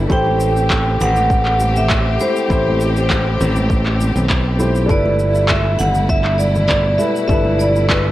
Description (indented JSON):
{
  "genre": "sunset chillout",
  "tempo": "100 BPM",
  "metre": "4/4",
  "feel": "straight",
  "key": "A minor",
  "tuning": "A4 = 439 Hz",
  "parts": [
    { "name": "dark concert grand piano", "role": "accompaniment", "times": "0.0-8.1 s", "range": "G3 to C5", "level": "-22 LUFS", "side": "equal", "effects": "auto-pan" },
    { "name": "clear studio string section", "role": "sustained chords", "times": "0.0-8.1 s", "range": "B2 to G4", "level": "-24 LUFS", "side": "left 1 dB", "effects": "none" },
    { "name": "modern bright fingered electric bass", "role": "bass", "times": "0.0-8.1 s", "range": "G1 to B1", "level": "-17 LUFS", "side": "equal", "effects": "none" },
    { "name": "vibraphone with hard mallets", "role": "melody", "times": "0.1-8.1 s", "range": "B4 to G5", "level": "-19 LUFS", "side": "equal", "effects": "tape echo" },
    { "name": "electronic kick drum", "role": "drums", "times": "0.1-8.0 s", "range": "none", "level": "-19 LUFS", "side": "equal", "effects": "overdrive" },
    { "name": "electronic shaker and handclaps", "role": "drums", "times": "0.1-8.0 s", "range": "none", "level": "-22 LUFS", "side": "equal", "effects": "overdrive" },
    { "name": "congas", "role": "percussion", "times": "0.3-8.0 s", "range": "none", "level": "-27 LUFS", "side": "left 1 dB", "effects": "none" }
  ],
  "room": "light reverb, small room ambience",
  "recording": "worn, warbling old tape, cassette tape, warbly pitch drift",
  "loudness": "-13 LUFS",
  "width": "side -15 dB against mid",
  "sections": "0.0-8.1 A section",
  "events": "none",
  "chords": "0.1 Am7; 4.9 G69"
}